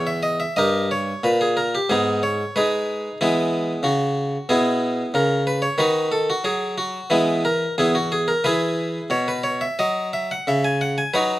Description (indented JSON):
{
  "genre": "classical, baroque-style suite movement for harpsichord",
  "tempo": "91 BPM",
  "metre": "4/4",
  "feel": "rubato",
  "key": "unclear",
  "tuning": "A4 = 443 Hz",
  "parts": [
    { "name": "harpsichord", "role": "solo", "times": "0.0-11.4 s", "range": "E2 to G#5", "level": "-19 LUFS", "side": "equal", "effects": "none" }
  ],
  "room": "light reverb",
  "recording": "close, detailed microphones",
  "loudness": "-19 LUFS",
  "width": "side -16 dB against mid",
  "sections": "0.0-11.4 A section",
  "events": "none",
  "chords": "0.0 N.C.; 0.6 Gdim; 1.9 G#m; 3.2 E; 5.8 D#madd11; 7.1 E; 9.8 F#5"
}